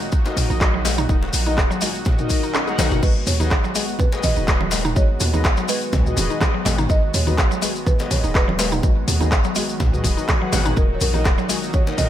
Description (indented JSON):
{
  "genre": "afro house",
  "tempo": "124 BPM",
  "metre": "4/4",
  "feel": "swing 54% on 16ths",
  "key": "G# minor",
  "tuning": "A4 = 439 Hz",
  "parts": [
    { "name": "warm analog pad", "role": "sustained chords", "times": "0.0-12.1 s", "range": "A#2 to F#4", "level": "-30 LUFS", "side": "equal", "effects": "chorus, tremolo, sidechain pumping" },
    { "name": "maracas", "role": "percussion", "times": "0.0-12.1 s", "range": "none", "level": "-31 LUFS", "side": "left 4 dB", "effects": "none" },
    { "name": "electronic kick drum", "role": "drums", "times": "0.1-12.1 s", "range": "none", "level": "-19 LUFS", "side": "equal", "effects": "studio reverb" },
    { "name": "mellow synth brass", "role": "stabs", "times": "0.3-12.1 s", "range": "D#4 to G#5", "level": "-29 LUFS", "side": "left 3 dB", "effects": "chorus, cassette tape, sidechain pumping, digital delay" },
    { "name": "djembe", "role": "percussion", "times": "0.3-12.1 s", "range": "none", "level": "-31 LUFS", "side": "left 4 dB", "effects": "none" },
    { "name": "house drum kit", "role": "drums", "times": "0.4-12.1 s", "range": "crash cymbal, handclaps, hi-hat, rim click, toms", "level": "-24 LUFS", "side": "equal", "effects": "studio reverb, gated reverb" },
    { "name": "mallet-like synth pluck", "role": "arpeggios", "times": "0.5-11.6 s", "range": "F#3 to G#4", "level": "-28 LUFS", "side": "equal", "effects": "chorus, sidechain pumping, digital delay" },
    { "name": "warm 808-style bass", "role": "bass", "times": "0.5-11.4 s", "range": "D#1 to D#2", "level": "-23 LUFS", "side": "equal", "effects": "sidechain pumping" },
    { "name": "folk marimba with soft mallets", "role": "melody", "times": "3.0-12.1 s", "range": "A#4 to D#5", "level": "-29 LUFS", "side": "right 2 dB", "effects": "digital delay" },
    { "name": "congas", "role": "percussion", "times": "3.3-12.1 s", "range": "none", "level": "-29 LUFS", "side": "right 4 dB", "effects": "none" }
  ],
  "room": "light reverb, small room reverb",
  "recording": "bright 1980s-style digital production",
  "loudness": "-17 LUFS",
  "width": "side -11 dB against mid",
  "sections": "0.0-12.1 A section",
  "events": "kick drops out 2.5-3.0; drum fill 2.7-3.0",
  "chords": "0.0 D#m; 3.0 G#m7; 10.8 D#m"
}